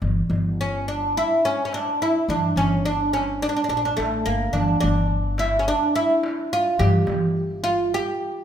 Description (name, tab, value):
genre	Arabic maqam ensemble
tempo	106 BPM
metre	4/4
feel	straight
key	G maqam nikriz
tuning	A4 = 440 Hz
part	upright bass	bass	0.0-8.0 s	G1 to G2	-25 LUFS	left 1 dB	none
part	darbuka	percussion	0.0-8.1 s	none	-26 LUFS	right 2 dB	none
part	oud	melody	0.6-8.4 s	A3 to G4	-21 LUFS	right 1 dB	none
room	moderate recital hall reverb, RT60 1.4 s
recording	minimal, uncompressed stereo recording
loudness	-20 LUFS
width	side -9 dB against mid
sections	0.0-8.4 A section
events	none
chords	none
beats	| 0.02 0.58 1.15 1.71 | 2.27 2.84 3.40 3.97 | 4.53 5.10 5.66 6.22 | 6.79 7.35 7.92